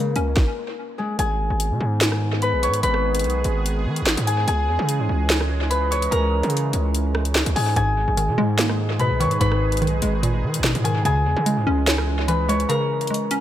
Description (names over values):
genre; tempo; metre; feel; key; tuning
hip hop, drill; 146 BPM; 4/4; half-time; G# minor; A4 = 445 Hz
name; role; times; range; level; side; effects
concert harp; melody; 0.0-13.4 s; G#3 to C#6; -24 LUFS; left 2 dB; dub echo
hollow square pluck; accompaniment; 0.0-1.2, 7.8-13.4 s; G#2 to C#5; -24 LUFS; equal; chorus, dub echo
distorted 808-style bass; bass; 0.0-12.7 s; G#1 to D#3; -23 LUFS; equal; distortion
drill drum kit; drums; 0.2-13.4 s; handclaps, hi-hat, kick drum, rim click, snare drum; -25 LUFS; equal; dub echo
sweeping resonant pad; sustained chords; 1.2-13.4 s; D#3 to G#4; -29 LUFS; right 2 dB; chorus
room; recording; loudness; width
light reverb; echo-heavy mix; -18 LUFS; side -12 dB against mid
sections
0.0-1.2 A section; 1.2-13.4 B section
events
stop 0.4-1.2; kick muted 12.7-13.4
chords
0.0 C#m; 1.2 G#m; 4.5 C#m; 7.8 G#madd9; 11.1 C#m